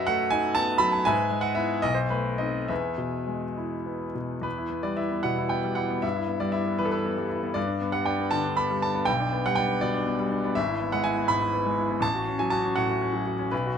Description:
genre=classical, romantic character piece for solo piano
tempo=66-84 BPM (dotted quarters)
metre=6/8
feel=rubato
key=E major, E minor from 4.4 s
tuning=A4 = 442 Hz
part: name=bright grand piano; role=solo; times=0.0-13.8 s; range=G#1 to B5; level=-24 LUFS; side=equal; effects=none
room=light reverb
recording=none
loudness=-24 LUFS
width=side -7 dB against mid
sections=0.0-4.4 A section; 4.4-13.8 B section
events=none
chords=0.0 B7/F#; 1.1 E/G#; 1.8 B7b9; 2.7 E; 4.4 Em; 6.0 Em/G; 7.6 G; 9.1 G/B; 10.6 E/G#; 12.0 F#m/A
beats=0.32 | 1.06 1.83 | 2.70 3.57 | 4.45 5.25 | 6.03 6.80 | 7.56 8.32 | 9.07 9.82 | 10.56 11.29 | 12.02 12.76 | 13.52

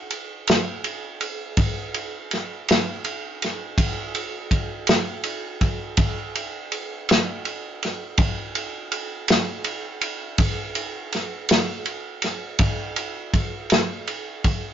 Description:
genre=blues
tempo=54 BPM (dotted quarters)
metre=12/8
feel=straight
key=none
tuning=none
part: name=warm soul drum kit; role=drums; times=0.1-14.6 s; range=kick drum, ride cymbal, snare drum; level=-22 LUFS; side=equal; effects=none
room=wet small room ambience, RT60 0.5 s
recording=rough rehearsal-room recording, nothing above 7.5 kHz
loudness=-22 LUFS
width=side -9 dB against mid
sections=0.0-14.7 A section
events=none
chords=none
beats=0.47 1.57 2.68 | 3.78 4.88 5.98 7.08 | 8.18 9.29 10.39 11.49 | 12.60 13.71

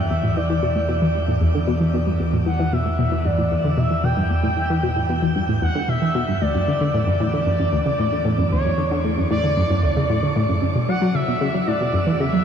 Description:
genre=ambient, sequencer-driven space music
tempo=114 BPM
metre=4/4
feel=straight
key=E dorian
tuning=A4 = 440 Hz
part: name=expressive portamento lead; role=melody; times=0.0-12.4 s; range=C#5 to G5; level=-24 LUFS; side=equal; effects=wide subtle chorus, cassette tape, analog delay
part: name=analog pluck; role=riff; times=0.0-12.4 s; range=D2 to F#3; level=-20 LUFS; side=equal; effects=chorus, analog delay
part: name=analog drone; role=bass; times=0.0-12.4 s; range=E2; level=-25 LUFS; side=equal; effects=chorus
room=wet shimmer reverb, RT60 7.1 s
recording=dark, warm production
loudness=-18 LUFS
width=side -8 dB against mid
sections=0.0-12.4 A section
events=filter sweep on synth arpeggio sound 0.0-12.4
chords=0.0 Em; 6.4 D; 10.6 F#5/E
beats=| 0.10 0.62 1.15 1.67 | 2.20 2.73 3.25 3.78 | 4.31 4.83 5.36 5.88 | 6.41 6.94 7.46 7.99 | 8.52 9.04 9.57 10.10 | 10.62 11.15 11.67 12.20

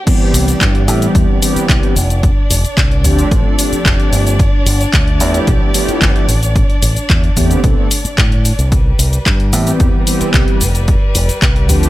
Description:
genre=nu-disco, nu disco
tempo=111 BPM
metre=4/4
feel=straight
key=C major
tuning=A4 = 437 Hz
part: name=dark studio violin section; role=sustained chords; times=0.0-11.9 s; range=G3 to D5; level=-23 LUFS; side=left 1 dB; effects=sidechain pumping
part: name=mellow synth brass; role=accompaniment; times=0.1-11.9 s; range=D3 to A4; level=-18 LUFS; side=equal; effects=chorus, digital delay
part: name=electronic kick drum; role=drums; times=0.1-11.8 s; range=none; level=-14 LUFS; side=equal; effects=studio reverb
part: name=house drum kit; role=drums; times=0.1-11.9 s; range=crash cymbal, handclaps, hi-hat, shaker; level=-18 LUFS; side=left 1 dB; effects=low-pass filter on perc, studio reverb, low-pass filter on snare, low-pass filter on hats, low-pass filter on cymbals
part: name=fingered electric bass with an envelope filter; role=bass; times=0.3-11.9 s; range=F1 to A2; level=-15 LUFS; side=equal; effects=tube saturation
room=digital ambience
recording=none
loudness=-10 LUFS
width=side -16 dB against mid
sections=0.1-11.9 A section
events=drop 0.1-11.9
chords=0.1 Cmaj7; 2.0 F69; 4.4 G13; 6.3 Amadd9; 8.7 Cmaj7; 10.6 F69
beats=| 0.07 0.61 1.15 1.69 | 2.23 2.77 3.31 3.85 | 4.39 4.93 5.47 6.01 | 6.55 7.10 7.64 8.18 | 8.72 9.26 9.80 10.34 | 10.88 11.42

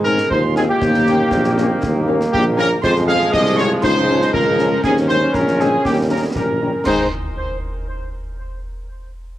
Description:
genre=military-style march for wind band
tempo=119 BPM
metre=2/4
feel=straight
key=Ab major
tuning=A4 = 440 Hz
part: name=dark trumpet section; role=melody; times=0.0-7.1 s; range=G4 to F5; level=-19 LUFS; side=equal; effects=cassette tape, analog delay
part: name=clear woodwind section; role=second line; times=0.0-7.1 s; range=Bb3 to Ab4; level=-25 LUFS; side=left 6 dB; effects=cassette tape
part: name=warm euphonium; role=second line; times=0.0-6.6 s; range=Ab3 to Ab4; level=-28 LUFS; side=right 7 dB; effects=none
part: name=clear trombone section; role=sustained chords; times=0.0-7.1 s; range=Eb3 to Eb4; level=-23 LUFS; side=equal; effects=cassette tape
part: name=warm tuba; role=bass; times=0.0-7.1 s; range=Bb1 to Ab2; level=-20 LUFS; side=equal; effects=none
part: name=mellow piccolo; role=second line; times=0.1-7.1 s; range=G5 to F6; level=-27 LUFS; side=right 6 dB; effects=cassette tape
part: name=mellow French horn section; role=accompaniment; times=0.1-7.1 s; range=Eb3 to Eb4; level=-26 LUFS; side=left 6 dB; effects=cassette tape
part: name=concert snare drum, concert bass drum and clash cymbals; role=drums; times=0.2-7.1 s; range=none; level=-25 LUFS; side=equal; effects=cassette tape
room=light reverb, small room ambience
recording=home recording on cassette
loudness=-14 LUFS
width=side -14 dB against mid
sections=0.0-6.9 A section; 6.9-7.9 B section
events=none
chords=0.0 Ab; 0.8 Eb7; 2.8 Fm; 3.8 Bbm7/Db; 4.8 Eb7sus4; 5.9 Eb7; 6.9 Ab5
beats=0.31 | 0.81 1.32 | 1.82 2.33 | 2.83 3.33 | 3.84 4.34 | 4.85 5.35 | 5.86 6.36 | 6.86

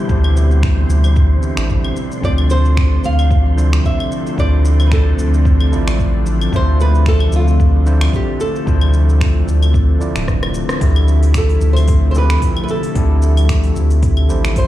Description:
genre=sunset chillout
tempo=112 BPM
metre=4/4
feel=swing 56% on 16ths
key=D dorian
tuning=A4 = 440 Hz
part: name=overdriven tine electric piano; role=accompaniment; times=0.0-14.7 s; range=D3 to E5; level=-24 LUFS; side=moving between left 4 dB and right 3 dB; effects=auto-pan, tape echo
part: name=lush unison pad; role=sustained chords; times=0.0-14.7 s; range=B2 to E4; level=-23 LUFS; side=equal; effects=chorus
part: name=wind-like tuned noise texture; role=texture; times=0.0-10.8 s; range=C5 to C6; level=-34 LUFS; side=left 1 dB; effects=built-in reverb
part: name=round analog bass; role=bass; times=0.1-14.7 s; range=D1 to D2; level=-13 LUFS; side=equal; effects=none
part: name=deep house drum kit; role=drums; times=0.1-14.7 s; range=claves, finger snaps, hi-hat, rim click, shaker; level=-26 LUFS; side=left 1 dB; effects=studio reverb
part: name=electronic kick drum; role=drums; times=0.1-14.7 s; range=none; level=-17 LUFS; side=equal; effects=studio reverb
part: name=flamenco guitar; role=melody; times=2.2-14.7 s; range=F4 to F5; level=-24 LUFS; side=right 2 dB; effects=tape echo
room=light reverb, digital ambience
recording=played on a big sound system in a bare room, large studio reverb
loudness=-12 LUFS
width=side -14 dB against mid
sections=0.0-10.8 A section; 10.8-14.7 A section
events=drum fill 10.3-10.8; band accent 10.7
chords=0.0 Cmaj7/D; 2.0 Dm7; 10.8 Fmaj7/D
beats=| 0.10 0.63 1.17 1.71 | 2.24 2.78 3.31 3.85 | 4.38 4.92 5.46 5.99 | 6.53 7.06 7.60 8.13 | 8.67 9.21 9.74 10.28 | 10.81 11.35 11.88 12.42 | 12.96 13.49 14.03 14.56

